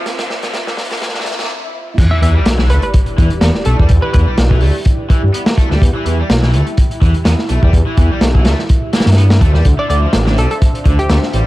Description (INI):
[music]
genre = breakbeat, breaks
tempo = 125 BPM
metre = 4/4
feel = swing 55% on 16ths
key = E phrygian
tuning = A4 = 437 Hz
[part]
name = dark analog pad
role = sustained chords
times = 0.0-11.5 s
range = D3 to F5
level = -25 LUFS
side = right 1 dB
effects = chorus, sidechain pumping
[part]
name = cranked stack guitar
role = riff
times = 0.0-11.4 s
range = D3 to B3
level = -24 LUFS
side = equal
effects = overdrive, tape echo
[part]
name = riser, swell and sub drop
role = sound effects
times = 0.0-3.9 s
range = none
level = -22 LUFS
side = equal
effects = none
[part]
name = crunchy breakbeat drum kit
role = drums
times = 0.1-11.5 s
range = crash cymbal, hi-hat, kick drum, snare drum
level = -14 LUFS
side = equal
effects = none
[part]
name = dark detuned saw bass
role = bass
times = 2.0-11.4 s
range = A1 to G2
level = -12 LUFS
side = equal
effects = none
[part]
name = hollow square pluck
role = melody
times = 2.1-4.2, 9.8-11.2 s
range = G4 to E5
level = -22 LUFS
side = equal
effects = chorus, AM radio sound, tape echo
[sound]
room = little or no reverb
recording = dark, warm production, vinyl crackle, high-pass filter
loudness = -10 LUFS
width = side -17 dB against mid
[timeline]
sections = 0.0-2.0 A section; 2.0-11.5 B section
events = build-up 0.0-2.0; drum fill 0.0-1.5; riser 0.0-1.5; swell 1.0-2.0; break 1.5-2.0; drop 2.0-11.5; impact 2.0-3.9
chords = 0.0 Dm9; 2.0 Em7; 9.7 Dm9